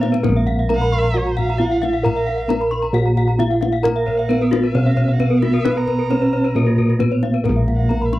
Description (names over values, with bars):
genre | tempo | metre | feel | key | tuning
Balinese gamelan | 133 BPM | 4/4 | straight | Bb pelog | A4 = 439 Hz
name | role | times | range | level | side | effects
gamelan-type bronze metallophone | melody | 0.0-8.2 s | Bb3 to Bb4 | -20 LUFS | right 2 dB | none
warm erhu | second line | 0.0-8.2 s | Bb4 to Bb5 | -30 LUFS | right 4 dB | none
gamelan-type bronze metallophone | accompaniment | 0.0-0.2, 7.5-8.2 s | Bb3 | -30 LUFS | right 4 dB | none
gamelan-type bronze metallophone | arpeggios | 0.0-8.2 s | Gb4-40c to C6+50c | -26 LUFS | left 6 dB | none
gamelan-type bronze metallophone | arpeggios | 0.0-8.1 s | Gb4-40c to Cb6 | -28 LUFS | right 5 dB | none
gamelan-type bossed gongs | bass | 0.0-8.2 s | Bb1 to Cb5 | -19 LUFS | equal | none
kendang | percussion | 0.0-8.2 s | none | -26 LUFS | left 7 dB | none
room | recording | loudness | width
light reverb | dry, close 1970s-style studio recording | -15 LUFS | side -16 dB against mid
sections
0.2-8.2 A section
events
drum fill 0.0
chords
none